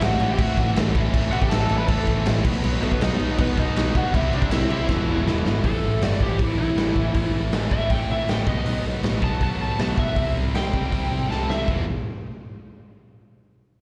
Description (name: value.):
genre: punk rock.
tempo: 159 BPM.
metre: 4/4.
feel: straight.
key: E minor.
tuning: A4 = 440 Hz.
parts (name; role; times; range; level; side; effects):
lead guitar through a small cranked amp; melody; 0.0-11.7 s; A3 to B5; -30 LUFS; equal; overdrive, slapback echo.
distorted electric guitar; riff; 0.0-11.8 s; A2 to G#4; -33 LUFS; equal; distortion, slapback echo.
overdriven electric guitar; riff; 0.0-5.6 s; E2 to C4; -34 LUFS; equal; none.
tight distorted guitar; riff; 0.0-11.8 s; E2 to C4; -34 LUFS; equal; distortion, slapback echo.
overdriven picked electric bass; bass; 0.0-11.9 s; E1 to C3; -28 LUFS; equal; none.
raw garage drum kit; drums; 0.0-11.8 s; crash cymbal, hi-hat, kick drum, snare drum; -26 LUFS; equal; none.
room: studio reverb.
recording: live gig heard through the venue's PA, recital hall reverb.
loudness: -22 LUFS.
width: mono.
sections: 0.0-5.6 A section; 5.6-11.7 B section; 11.7-13.2 C section.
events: drum fill 4.9-5.6, 11.3-11.7; lead electric guitar solo 5.6-11.7.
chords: 0.0 Am; 2.5 B; 4.1 C; 4.9 Em; 5.6 Am; 8.5 B; 10.2 C; 11.7 E5.